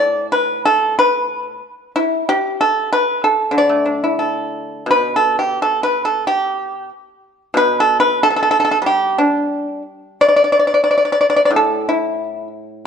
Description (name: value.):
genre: chinese traditional, Chinese solo plucked strings.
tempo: 87-95 BPM.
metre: 2/4.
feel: rubato.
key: unclear.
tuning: A4 = 435 Hz.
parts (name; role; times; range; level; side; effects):
pipa; solo; 0.0-12.9 s; A2 to D5; -14 LUFS; equal; none.
room: moderate recital hall reverb, RT60 1.5 s.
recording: dark, warm production.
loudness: -14 LUFS.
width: side -7 dB against mid.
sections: 0.0-4.9 A section; 4.9-12.9 B section.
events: none.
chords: none.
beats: 0.27 | 0.95 1.61 | 2.25 2.89 | 3.54 4.21 | 4.91 5.59 | 6.27 6.93 | 7.57 8.20 | 8.84 9.51 | 10.19 10.87 | 11.53 12.18 | 12.81.